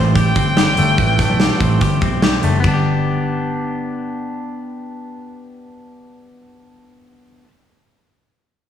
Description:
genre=jangly indie pop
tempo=145 BPM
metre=4/4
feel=straight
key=G major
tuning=A4 = 440 Hz
part: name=warm violin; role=melody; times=0.0-2.2 s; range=C5 to G5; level=-21 LUFS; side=left 1 dB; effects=tape echo, plate reverb
part: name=clean electric guitar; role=arpeggios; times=0.0-7.5 s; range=E3 to G4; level=-23 LUFS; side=left 3 dB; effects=tape echo, plate reverb
part: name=vintage muted picked electric bass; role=bass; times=0.0-7.4 s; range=F#1 to B1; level=-18 LUFS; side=equal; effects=none
part: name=big rock drum kit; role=drums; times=0.2-2.7 s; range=hi-hat, kick drum, ride cymbal, snare drum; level=-18 LUFS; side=right 1 dB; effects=none
room=light reverb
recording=dry, gritty hardware recording, transformer saturation, studio ambience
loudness=-14 LUFS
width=side -9 dB against mid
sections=0.0-2.6 A section; 2.6-6.0 B section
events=none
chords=0.0 Am7; 2.6 G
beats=0.16 0.57 | 0.99 1.40 1.82 2.23 | 2.65 3.06 3.48 3.89 | 4.30 4.72 5.13 5.55

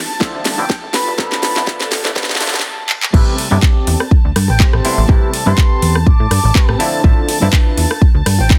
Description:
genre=filtered disco house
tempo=123 BPM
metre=4/4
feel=swing 54% on 16ths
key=A minor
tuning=A4 = 440 Hz
part: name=warm studio string section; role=sustained chords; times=0.0-8.6 s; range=A5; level=-28 LUFS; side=equal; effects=sidechain pumping, low-pass filter
part: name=plucky analog bass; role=bass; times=0.0-8.5 s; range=G1 to A2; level=-18 LUFS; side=equal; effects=sidechain pumping, high-pass filter, low-pass filter
part: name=clav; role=accompaniment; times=0.2-7.5 s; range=C3 to E5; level=-25 LUFS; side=equal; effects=phaser, sidechain pumping, low-pass filter
part: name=electric guitar at the edge of break-up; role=riff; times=0.2-8.6 s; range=C4 to D5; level=-26 LUFS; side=equal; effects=vintage 12-bit sampler grit, sidechain pumping, low-pass filter
part: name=electronic kick drum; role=drums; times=0.2-8.6 s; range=none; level=-14 LUFS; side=equal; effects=none
part: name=house drum kit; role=drums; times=0.2-8.6 s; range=crash cymbal, handclaps, hi-hat, rim click, snare drum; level=-21 LUFS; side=equal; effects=sidechain pumping on hats, sidechain pumping on cymbals
part: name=mellow silver concert flute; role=melody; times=0.6-8.6 s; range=G5 to D6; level=-25 LUFS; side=equal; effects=vintage 12-bit sampler grit, sidechain pumping, low-pass filter
room=light reverb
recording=dense, heavily limited modern master, high-pass filter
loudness=-14 LUFS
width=mono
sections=0.0-3.1 A section; 3.1-8.6 B section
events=build-up 0.0-3.1; drum fill 0.0-2.7, 2.9; filter sweep 0.0-3.1; break 2.7-3.1; drop 3.1-8.6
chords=0.0 Dm9; 0.9 G9; 3.1 Am9; 6.8 Dm9/A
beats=0.21 0.70 | 1.19 1.68 2.17 2.65 | 3.14 3.63 4.12 4.60 | 5.09 5.58 6.07 6.55 | 7.04 7.53 8.02 8.51

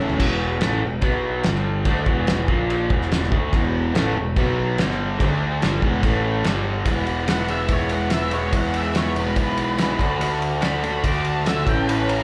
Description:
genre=classic rock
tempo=144 BPM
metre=4/4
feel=straight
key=unclear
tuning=A4 = 440 Hz
part: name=picked twelve-string acoustic guitar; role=accompaniment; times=0.0-0.2, 6.9-12.2 s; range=E2 to F#4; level=-34 LUFS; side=equal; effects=none
part: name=crunchy overdriven guitar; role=riff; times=0.0-12.2 s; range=E2 to F#4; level=-26 LUFS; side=equal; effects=slapback echo
part: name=sludgy distorted guitar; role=riff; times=0.0-0.2, 3.5-6.9 s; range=E2 to E4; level=-32 LUFS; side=equal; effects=overdrive
part: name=growling picked electric bass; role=bass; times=0.0-12.2 s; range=E1 to E2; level=-28 LUFS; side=equal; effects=overdrive
part: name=cloth-damped thuddy drum kit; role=drums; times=0.1-12.2 s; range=crash cymbal, kick drum, ride cymbal, snare drum, toms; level=-26 LUFS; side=equal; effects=none
part: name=octave-fuzz lead guitar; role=melody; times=7.3-12.2 s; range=A#4 to D6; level=-30 LUFS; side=equal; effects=distortion, slapback echo, analog delay
room=light reverb, small room reverb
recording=live gig heard through the venue's PA, club reverb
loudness=-21 LUFS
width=mono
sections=0.2-6.9 A section; 6.9-12.2 B section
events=drum fill 0.0; lead electric guitar solo 6.9-12.2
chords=0.2 E5; 1.0 B5; 1.5 G5; 1.9 E5; 2.5 A#5; 2.9 E5; 4.4 B5; 4.8 G5; 5.2 D5; 5.6 E5; 6.0 A5; 6.5 G5; 6.9 E; 10.0 D; 11.7 A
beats=| 0.21 0.62 1.04 1.46 | 1.87 2.29 2.71 3.12 | 3.54 3.96 4.37 4.79 | 5.21 5.62 6.04 6.46 | 6.87 7.29 7.71 8.12 | 8.54 8.96 9.38 9.80 | 10.21 10.63 11.05 11.46 | 11.88

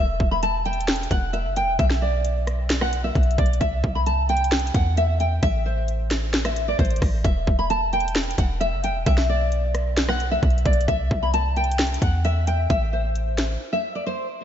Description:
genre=hip hop, trap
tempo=132 BPM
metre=4/4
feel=half-time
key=E minor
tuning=A4 = 440 Hz
part: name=nylon-string guitar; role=melody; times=0.0-14.3 s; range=C5 to B5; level=-24 LUFS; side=equal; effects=wide subtle chorus, low-pass filter, tape echo
part: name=clean 808-style bass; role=bass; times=0.0-13.6 s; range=E1 to E2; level=-23 LUFS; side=equal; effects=none
part: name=trap drum kit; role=drums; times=0.2-13.5 s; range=hi-hat, kick drum, rim click, snare drum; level=-24 LUFS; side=equal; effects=none
room=light reverb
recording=nothing above 7.7 kHz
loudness=-20 LUFS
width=side -10 dB against mid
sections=0.0-14.4 A section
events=break 13.6-14.4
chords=0.0 Em; 1.8 Bm; 3.6 C; 5.4 Am; 7.2 Em; 9.1 Bm; 10.9 C; 12.7 Am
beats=0.43 0.88 1.34 | 1.79 2.25 2.70 3.15 | 3.61 4.06 4.52 4.97 | 5.43 5.88 6.34 6.79 | 7.25 7.70 8.15 8.61 | 9.06 9.52 9.97 10.43 | 10.88 11.34 11.79 12.25 | 12.70 13.15 13.61 14.06

